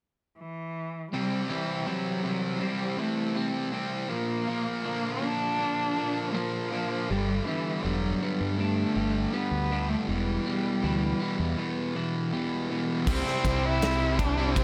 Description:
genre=quiet-loud alternative rock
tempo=80 BPM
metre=4/4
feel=straight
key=unclear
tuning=A4 = 440 Hz
part: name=rich cello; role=melody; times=0.4-14.6 s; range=E3 to E4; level=-33 LUFS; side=equal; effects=plate reverb
part: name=twelve-string electric guitar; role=arpeggios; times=1.1-13.1 s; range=E2 to D4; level=-39 LUFS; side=equal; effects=plate reverb
part: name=fuzz guitar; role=riff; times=1.1-14.6 s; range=E2 to E4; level=-33 LUFS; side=equal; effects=distortion
part: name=growling fingered electric bass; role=bass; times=7.1-14.6 s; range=E1 to G2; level=-32 LUFS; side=equal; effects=overdrive
part: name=bright tonewheel organ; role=sustained chords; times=13.1-14.6 s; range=none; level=barely audible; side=none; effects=none
part: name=fuzz guitar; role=riff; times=13.1-14.6 s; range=C3 to E4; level=-37 LUFS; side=equal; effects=none
part: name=fuzz guitar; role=riff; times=13.1-14.6 s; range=C3 to C4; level=-37 LUFS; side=equal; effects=none
part: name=big rock drum kit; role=drums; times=13.1-14.6 s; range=crash cymbal, kick drum, ride cymbal, snare drum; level=-32 LUFS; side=equal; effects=none
room=moderate large studio reverb, RT60 0.8 s, studio ambience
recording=none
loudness=-29 LUFS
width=mono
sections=0.0-1.1 A section; 1.1-13.1 B section; 13.1-14.6 C section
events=none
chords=0.0 N.C.; 1.1 C; 4.1 Bb; 7.1 Em; 13.1 C

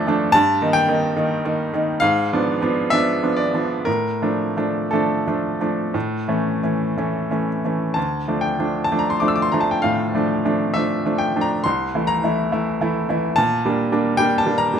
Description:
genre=classical, romantic nocturne for solo piano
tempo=56-76 BPM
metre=4/4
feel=rubato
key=D minor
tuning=A4 = 440 Hz
part: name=bright baby grand piano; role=solo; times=0.0-14.8 s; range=C2 to E6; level=-18 LUFS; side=equal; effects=none
room=light reverb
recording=none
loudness=-18 LUFS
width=side -8 dB against mid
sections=0.0-14.8 A section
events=none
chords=0.3 Eb/G; 2.0 G#dim7; 3.9 Dm/A; 5.9 A; 8.0 Dm; 11.6 Am/C; 13.4 Gm/Bb

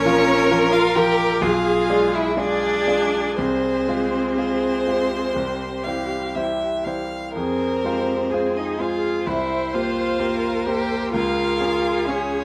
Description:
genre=classical, slow romantic movement for piano quintet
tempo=60-67 BPM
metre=4/4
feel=rubato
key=F minor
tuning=A4 = 440 Hz
part: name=rich violin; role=melody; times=0.0-12.4 s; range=G#4 to F5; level=-28 LUFS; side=equal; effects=none
part: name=clear cello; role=second line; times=0.0-12.4 s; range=C4 to G4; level=-26 LUFS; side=equal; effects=none
part: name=rich violin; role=second line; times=0.0-12.4 s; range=C5 to G5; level=-30 LUFS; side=equal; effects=none
part: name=clear grand piano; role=accompaniment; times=0.0-12.4 s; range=Bb1 to D5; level=-27 LUFS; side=equal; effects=none
part: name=rich viola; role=accompaniment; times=0.0-12.4 s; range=G4 to C5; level=-29 LUFS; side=equal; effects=none
room=moderate studio reverb, RT60 0.8 s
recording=none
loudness=-21 LUFS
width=mono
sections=0.0-12.4 A section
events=none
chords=0.0 Bbm; 1.4 Bdim7; 3.4 Fm/C; 5.4 C; 7.3 Fm; 9.3 C5; 11.1 Db

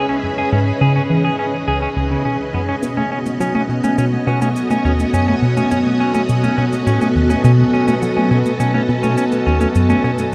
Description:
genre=ambient, sequencer-driven space music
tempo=104 BPM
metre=4/4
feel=straight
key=unclear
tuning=A4 = 440 Hz
part: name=string machine, full ensemble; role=sustained chords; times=0.0-10.3 s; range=B3 to E5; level=-21 LUFS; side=equal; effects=ensemble chorus
part: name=semi-hollow electric guitar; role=arpeggios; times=0.0-10.1 s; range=C#3 to G#4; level=-24 LUFS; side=equal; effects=delay
part: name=tight sequenced synth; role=riff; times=0.2-10.2 s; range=C#2 to F#3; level=-21 LUFS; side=equal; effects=chorus, phaser, delay
part: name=electronic cabasa and toms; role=percussion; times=2.8-10.3 s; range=none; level=-26 LUFS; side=equal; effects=delay
room=wet huge ambient reverb, RT60 8.0 s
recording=cassette tape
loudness=-16 LUFS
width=mono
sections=0.0-10.3 A section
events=filter sweep on synth arpeggio sound 0.0-10.3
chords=0.0 C#m7; 2.8 B7

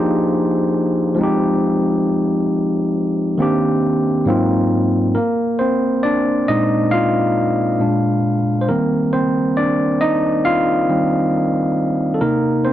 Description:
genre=R&B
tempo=68 BPM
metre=4/4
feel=swing 57% on 16ths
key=Eb major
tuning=A4 = 440 Hz
part: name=overdriven tine electric piano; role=solo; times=0.0-12.7 s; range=Ab2 to F5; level=-15 LUFS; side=equal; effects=none
room=light reverb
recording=dark, warm production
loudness=-15 LUFS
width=side -12 dB against mid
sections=0.0-5.2 A section; 5.2-12.7 B section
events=tine electric piano solo 5.2-12.7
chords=0.0 Ebmaj7; 1.2 Fm9; 3.4 Cm9; 4.3 Ab13; 5.2 Bb9sus4; 7.8 Bb7; 8.7 Eb69; 12.2 Cm7

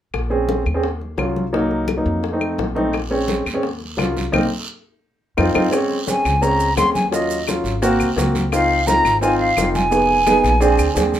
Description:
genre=Afro-Cuban jazz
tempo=172 BPM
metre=4/4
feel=straight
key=Bb minor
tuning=A4 = 440 Hz
part: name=upright bass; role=bass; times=0.1-11.2 s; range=F1 to F2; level=-24 LUFS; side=equal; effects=none
part: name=bongos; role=percussion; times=0.1-11.2 s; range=none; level=-28 LUFS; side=left 8 dB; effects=none
part: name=claves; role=percussion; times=0.1-11.0 s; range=none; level=-27 LUFS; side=left 3 dB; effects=none
part: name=congas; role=percussion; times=0.1-11.2 s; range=none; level=-28 LUFS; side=equal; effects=none
part: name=warm baby grand piano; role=accompaniment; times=0.3-11.2 s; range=Gb3 to Ab4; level=-19 LUFS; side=right 1 dB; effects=none
part: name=guiro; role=percussion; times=2.9-11.2 s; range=none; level=-33 LUFS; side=right 4 dB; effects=none
part: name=maracas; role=percussion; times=5.7-11.2 s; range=none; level=-33 LUFS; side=right 6 dB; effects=none
part: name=bright silver concert flute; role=melody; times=6.1-11.1 s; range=Eb5 to C6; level=-17 LUFS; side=equal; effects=none
room=moderate studio ambience, RT60 0.5 s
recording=minimal, uncompressed stereo recording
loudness=-16 LUFS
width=side -11 dB against mid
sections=0.1-5.7 A section; 5.7-11.2 B section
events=band accent 4.3-5.7; grand piano fill 4.7-5.7; drum fill 5.2-5.7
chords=0.1 Bbm7; 0.8 Ebm9; 1.5 Cm7b5; 2.2 F7; 2.9 Bbm7; 3.6 Ebm9; 4.3 Cm7; 5.0 F5; 5.7 Bbm7; 7.1 Ebm7; 7.8 Ab7; 8.5 Dbmaj7; 9.9 Fm7b5; 10.6 Bb7

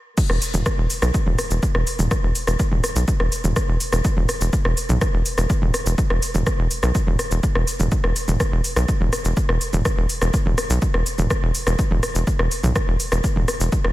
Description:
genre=melodic techno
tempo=124 BPM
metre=4/4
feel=straight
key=unclear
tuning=A4 = 440 Hz
part: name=electronic kick drum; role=drums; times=0.2-13.8 s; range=none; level=-22 LUFS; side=equal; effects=overdrive, high-pass filter on kick, high-pass filter on room
part: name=house drum kit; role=drums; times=0.2-13.9 s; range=crash cymbal, hi-hat, rim click, shaker, toms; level=-23 LUFS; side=equal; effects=overdrive, sidechain pumping on hats, sidechain pumping on perc, sidechain pumping on toms, sidechain pumping on cymbals
part: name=tight sequencer bass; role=bass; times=0.3-13.9 s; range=E1 to B1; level=-20 LUFS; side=equal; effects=sidechain pumping
room=light reverb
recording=high-pass filter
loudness=-18 LUFS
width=side -16 dB against mid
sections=0.2-13.9 A section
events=stop 0.0; drop 0.2-13.9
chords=none

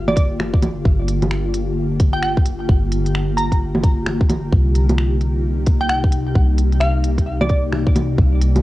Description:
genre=future garage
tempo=131 BPM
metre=4/4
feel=swing 62% on 16ths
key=G minor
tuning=A4 = 436 Hz
part: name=ethereal airy pad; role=sustained chords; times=0.0-8.6 s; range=C3 to G4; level=-23 LUFS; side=left 1 dB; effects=ensemble chorus, built-in reverb, vintage 12-bit sampler grit, sidechain pumping, cassette tape, plate reverb
part: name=soft 808-style bass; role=bass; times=0.0-8.6 s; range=G1 to C2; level=-20 LUFS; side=equal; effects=sidechain pumping
part: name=glassy wavetable pluck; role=melody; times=0.1-7.6 s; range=D5 to Bb5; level=-25 LUFS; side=right 1 dB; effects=chorus, cassette tape, tape echo, plate reverb
part: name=organic electronic drum kit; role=drums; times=0.1-8.6 s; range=bongos, finger snaps, hi-hat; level=-22 LUFS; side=right 1 dB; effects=studio reverb, cassette tape
part: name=electronic kick drum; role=drums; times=0.2-8.3 s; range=none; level=-16 LUFS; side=equal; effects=studio reverb, cassette tape
room=light reverb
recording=home recording on cassette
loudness=-15 LUFS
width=side -17 dB against mid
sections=0.0-8.6 A section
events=none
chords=0.0 Gm7; 4.5 Cm7

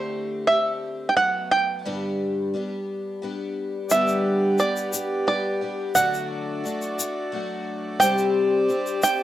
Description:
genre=acoustic folk duo or small band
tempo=88 BPM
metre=3/4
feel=straight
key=G major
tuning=A4 = 440 Hz
part: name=bluegrass banjo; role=melody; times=0.0-9.2 s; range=C5 to G5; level=-21 LUFS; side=right 2 dB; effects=cassette tape
part: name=picked twelve-string acoustic guitar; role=accompaniment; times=0.0-9.2 s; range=G2 to G4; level=-26 LUFS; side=left 2 dB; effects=wide subtle chorus, cassette tape
part: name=pedal harmonium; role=sustained chords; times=3.9-9.2 s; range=A3 to D5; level=-29 LUFS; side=right 1 dB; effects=cassette tape
part: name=tube shaker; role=percussion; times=3.9-9.2 s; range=none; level=-30 LUFS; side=left 5 dB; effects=none
room=wet spring reverb, RT60 1.3 s, small room reverb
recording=home recording on cassette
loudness=-21 LUFS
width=side -13 dB against mid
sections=0.0-3.9 A section; 3.9-9.2 B section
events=none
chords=0.0 D7sus4; 1.2 F#madd11; 1.8 G; 6.0 D; 8.0 Csus2

